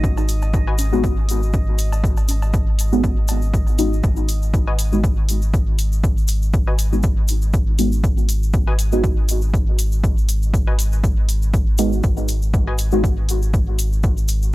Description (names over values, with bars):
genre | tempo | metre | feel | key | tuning
dub techno | 120 BPM | 4/4 | swing 55% on 16ths | G# minor | A4 = 440 Hz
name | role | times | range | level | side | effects
round analog bass | bass | 0.0-14.5 s | G#1 | -19 LUFS | equal | sidechain pumping
electronic kick drum | drums | 0.0-14.1 s | none | -19 LUFS | equal | overdrive
congas and cowbell | percussion | 0.0-3.9 s | none | -36 LUFS | right 2 dB | sidechain pumping on perc, dub echo
tube shaker | percussion | 0.0-14.5 s | none | -32 LUFS | left 3 dB | none
drifting glass-harmonics texture | texture | 0.0-4.0 s | D#5 | -37 LUFS | right 1 dB | chorus, built-in reverb, sidechain pumping
electronic hi-hat | drums | 0.3-14.4 s | none | -29 LUFS | right 1 dB | overdrive
wavetable chord stab | riff | 0.7, 4.7-12.7 s | F#4 to G#5 | -32 LUFS | left 3 dB | sidechain pumping, dub echo
deep mellow chord stab | stabs | 0.9-13.0 s | G#3 to F#4 | -23 LUFS | equal | chorus, phaser, sidechain pumping, dub echo
room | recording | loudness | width
digital ambience | dry, gritty hardware recording | -16 LUFS | side -18 dB against mid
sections
0.0-4.0 A section; 4.0-14.5 A section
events
none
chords
0.0 G#m7